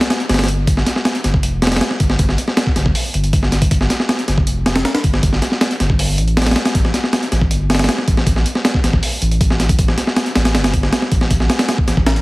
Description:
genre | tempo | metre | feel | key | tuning
drum and bass, jungle | 158 BPM | 4/4 | straight | unclear | A4 = 440 Hz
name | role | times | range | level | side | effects
breakbeat sampler-style drum kit | drums | 0.0-12.2 s | hi-hat, kick drum, snare drum | -15 LUFS | equal | small room ambience
saturated sub bass | bass | 0.3-12.2 s | F1 to A1 | -17 LUFS | equal | tube saturation
room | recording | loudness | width
light reverb | heavily compressed radio sound, multiband compression, vinyl crackle | -14 LUFS | side -21 dB against mid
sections
0.0-12.2 A section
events
none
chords
none

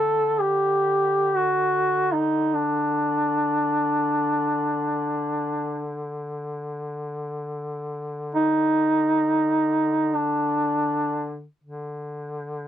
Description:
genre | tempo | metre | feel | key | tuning
caucasian folk, Caucasian lament | free time | none | none | unclear | A4 = 441 Hz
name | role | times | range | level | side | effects
warm duduk | melody | 0.0-11.4 s | D4 to A4 | -21 LUFS | equal | none
mellow duduk | drone | 0.0-12.7 s | D3 | -32 LUFS | left 2 dB | none
room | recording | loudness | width
light reverb | dry, close 1970s-style studio recording | -21 LUFS | side -11 dB against mid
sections
0.0-11.6 A section; 11.6-12.7 A section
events
none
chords
none

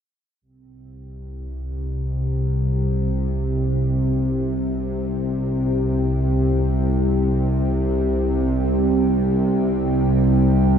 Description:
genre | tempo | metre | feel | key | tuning
dark ambient drone | free time | none | none | unclear | A4 = 440 Hz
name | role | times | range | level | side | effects
dark analog pad | sustained chords | 0.4-10.8 s | C4 to G5 | -29 LUFS | right 4 dB | chorus
bowed-like drone | drone | 1.1-10.8 s | C2 to C3 | -19 LUFS | equal | built-in reverb
room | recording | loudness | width
wet cathedral reverb, RT60 6.4 s | none | -18 LUFS | side -8 dB against mid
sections
0.4-10.8 A section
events
fade-in on analog synth pad 0.4-10.8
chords
0.4 C5

